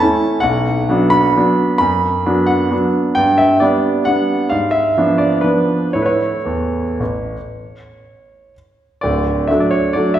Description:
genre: classical, piano waltz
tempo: 112-144 BPM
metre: 3/4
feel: rubato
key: D major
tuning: A4 = 435 Hz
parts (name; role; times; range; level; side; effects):
- clear concert grand piano; solo; 0.0-10.2 s; D1 to B5; -13 LUFS; right 1 dB; none
room: wet recital hall reverb, RT60 1.7 s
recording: heard from further back in the room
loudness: -13 LUFS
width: side -11 dB against mid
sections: 0.0-9.0 A section; 9.0-10.2 A section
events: none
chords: 0.4 Bm; 3.2 G; 4.5 G#dim7; 5.9 A; 9.0 D

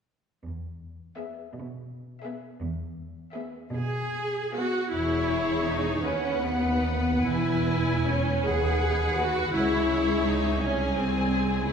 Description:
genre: classical, slow romantic movement for string orchestra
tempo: 48-58 BPM (dotted quarters)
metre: 6/8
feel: rubato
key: E major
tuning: A4 = 440 Hz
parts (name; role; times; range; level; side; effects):
- rich studio cello section; bass; 0.5-11.7 s; B#1 to B2; -32 LUFS; right 1 dB; none
- rich studio violin section; melody; 1.2-11.7 s; E5 to G#5; -34 LUFS; left 3 dB; none
- rich chamber violin section; second line; 1.2-11.7 s; G#4 to C#5; -34 LUFS; left 2 dB; none
- clear chamber viola section; accompaniment; 1.2-11.7 s; B3 to G#4; -27 LUFS; equal; none
- rich chamber double bass section; bass; 4.9-11.7 s; E1 to D#2; -31 LUFS; right 2 dB; none
room: wet scoring stage reverb, RT60 1.9 s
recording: heard from further back in the room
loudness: -24 LUFS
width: side -6 dB against mid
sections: 0.5-4.9 A section; 4.9-11.7 B section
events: none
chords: 0.5 E; 6.0 B/D#; 7.3 E; 9.6 C#m; 10.6 G#/B#

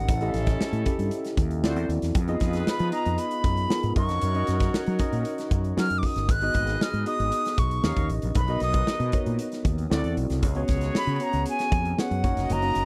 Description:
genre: polished 1980s jazz-funk pop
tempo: 116 BPM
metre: 4/4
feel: straight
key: unclear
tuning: A4 = 440 Hz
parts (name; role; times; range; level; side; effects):
- concert flute; melody; 0.0-12.8 s; F#5 to F#6; -31 LUFS; equal; none
- tine electric piano; accompaniment; 0.0-12.8 s; A#3 to F#5; -32 LUFS; equal; overdrive, subtle chorus
- fretless electric bass; bass; 0.0-12.8 s; E#1 to F#3; -29 LUFS; equal; none
- warm horn section; second line; 0.1-12.8 s; C#4 to E#5; -38 LUFS; equal; none
- modern studio drum kit; drums; 0.1-12.8 s; hi-hat, kick drum, snare drum; -30 LUFS; equal; none
room: light reverb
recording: none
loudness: -25 LUFS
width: mono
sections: 0.0-12.8 A section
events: none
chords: 0.1 A7; 1.6 D9; 2.2 Fm7b5; 4.0 F#6; 6.3 G#m7; 7.8 D#7; 8.4 Bmaj7; 9.9 D9; 10.4 C#7sus4; 12.2 F#6

